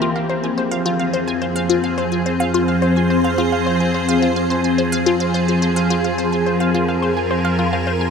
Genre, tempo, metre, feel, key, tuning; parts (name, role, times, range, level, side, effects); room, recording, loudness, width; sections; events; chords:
ambient, sequencer-driven space music; 107 BPM; 4/4; straight; F minor; A4 = 440 Hz
evolving wavetable pad; sustained chords; 0.0-8.1 s; F3 to C5; -18 LUFS; equal; ensemble chorus, built-in reverb, phaser
Celtic harp; arpeggios; 0.0-8.1 s; Bb3 to C5; -34 LUFS; left 1 dB
resonant blip pluck; riff; 0.0-8.1 s; F4 to Ab5; -22 LUFS; left 2 dB; phaser, ping-pong delay
analog drone; bass; 1.3-8.1 s; F2; -25 LUFS; equal; chorus
wet huge ambient reverb, RT60 8.4 s; -16 LUFS; side -6 dB against mid
0.0-8.1 A section
0.0 Fm